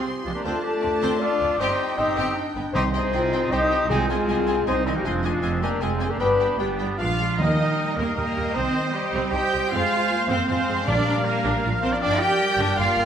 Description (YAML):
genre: cinematic, heroic adventure film score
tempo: 156 BPM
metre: 3/4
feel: straight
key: C minor, Eb major from 7.4 s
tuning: A4 = 439 Hz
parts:
  - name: warm studio violin section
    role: melody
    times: 0.0-13.1 s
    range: Eb5 to C6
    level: -34 LUFS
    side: left 4 dB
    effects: none
  - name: clear studio violin section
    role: second line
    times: 0.0-13.1 s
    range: G4 to G5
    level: -33 LUFS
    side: left 2 dB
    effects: none
  - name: concert flute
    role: second line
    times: 0.0-13.1 s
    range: Eb5 to Eb6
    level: -32 LUFS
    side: left 2 dB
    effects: none
  - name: mellow clarinet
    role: second line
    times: 0.0-13.1 s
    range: B3 to C5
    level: -33 LUFS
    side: equal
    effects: none
  - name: warm oboe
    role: second line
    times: 0.0-13.0 s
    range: C4 to F5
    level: -33 LUFS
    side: right 1 dB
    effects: none
  - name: rich symphonic viola section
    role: accompaniment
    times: 0.0-13.1 s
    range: G3 to D5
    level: -32 LUFS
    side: right 1 dB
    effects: none
  - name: dark French horn section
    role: sustained chords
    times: 0.0-13.1 s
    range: Eb3 to Eb5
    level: -28 LUFS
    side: left 4 dB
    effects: none
  - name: clear trumpet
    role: stabs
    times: 0.0-13.1 s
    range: G3 to G5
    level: -29 LUFS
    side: right 2 dB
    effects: none
  - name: warm symphonic cello section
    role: bass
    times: 0.0-13.1 s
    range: Eb3 to G4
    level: -27 LUFS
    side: right 3 dB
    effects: none
  - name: rich studio double bass section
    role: bass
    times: 0.3-13.0 s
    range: F1 to F2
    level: -29 LUFS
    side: right 3 dB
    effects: none
  - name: timpani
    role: percussion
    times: 2.7-4.4, 7.4-7.9, 10.9-11.4 s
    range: Bb2 to Eb3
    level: -29 LUFS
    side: left 1 dB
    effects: none
room: wet scoring stage reverb, RT60 1.7 s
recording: none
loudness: -20 LUFS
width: side -8 dB against mid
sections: 0.0-7.4 A section; 7.4-13.1 B section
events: none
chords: 0.4 Dm7; 1.6 Cm; 2.4 G/D; 2.7 Cm; 3.9 Ab/C; 5.1 Fm7; 6.2 G; 7.0 Bb7; 7.4 Eb; 8.6 Cm; 9.7 Fm; 10.9 Bb; 12.0 Gm